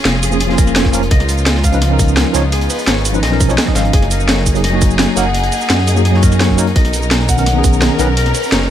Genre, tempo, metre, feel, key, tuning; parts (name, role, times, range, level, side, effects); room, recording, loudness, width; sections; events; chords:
liquid drum and bass; 170 BPM; 4/4; straight; A4 = 438 Hz
clear studio string section; sustained chords; 0.0-8.7 s; Bb3 to A#4; -22 LUFS; equal; sidechain pumping
concert harp; arpeggios; 0.0-8.7 s; Ab4 to Ab5; -22 LUFS; left 3 dB; ping-pong delay
dark detuned saw bass; bass; 0.1-8.7 s; F1 to Gb2; -16 LUFS; equal
crunchy breakbeat drum kit; drums; 0.1-8.7 s; hi-hat, snare drum; -24 LUFS; equal; high-pass filter on hats, small room reverb, high-pass filter on snare, high-pass filter on room
drum and bass drum kit; drums; 0.1-8.6 s; hi-hat, shaker, snare drum; -18 LUFS; right 1 dB; small room reverb
barky tine electric piano; accompaniment; 0.3-8.1 s; D#3 to Eb5; -19 LUFS; equal; medium stereo tremolo, ping-pong delay
electronic kick drum; drums; 0.6-7.7 s; -13 LUFS; equal; small room reverb
small room ambience; -11 LUFS; side -10 dB against mid
0.0-8.7 A section
0.0 Bbm7; 1.1 Db9; 3.9 Gb69; 6.8 Bmaj9